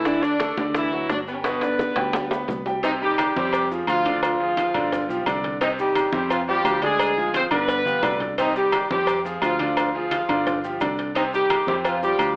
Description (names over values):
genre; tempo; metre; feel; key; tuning
latin, salsa; 173 BPM; 4/4; straight; C minor; A4 = 440 Hz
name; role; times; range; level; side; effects
warm horn section; melody; 0.0-12.4 s; E3 to Eb5; -22 LUFS; equal; none
bright concert grand piano; accompaniment; 0.0-12.3 s; B2 to B5; -26 LUFS; equal; none
fingered electric bass; bass; 0.0-12.4 s; G1 to F2; -34 LUFS; equal; none
bongos and cowbell; percussion; 0.1-12.4 s; none; -30 LUFS; equal; none
congas; percussion; 0.1-12.4 s; none; -33 LUFS; equal; none
maracas; percussion; 0.1-12.4 s; none; -50 LUFS; left 1 dB; none
timbales and agogo bells; percussion; 0.1-12.4 s; none; -27 LUFS; equal; none
room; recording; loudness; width
moderate large studio reverb, RT60 0.9 s; AM radio sound; -20 LUFS; side -32 dB against mid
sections
0.0-2.8 A section; 2.8-12.4 B section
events
drum fill 1.4-2.8, 7.9-8.4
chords
0.1 D; 1.4 G; 2.8 Cm; 3.5 Fm; 4.2 Ddim; 4.9 G7; 5.6 Cm; 6.3 Fm; 7.0 Dm7b5; 7.7 G7; 8.4 Cm; 9.1 Fm; 9.8 Ddim; 10.5 G5; 11.2 Cm; 11.8 F5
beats
| 0.06 0.41 0.75 1.10 | 1.45 1.79 2.14 2.49 | 2.84 3.18 3.53 3.88 | 4.22 4.57 4.92 5.26 | 5.61 5.96 6.30 6.65 | 7.00 7.34 7.69 8.04 | 8.38 8.73 9.08 9.42 | 9.77 10.12 10.46 10.81 | 11.16 11.50 11.85 12.20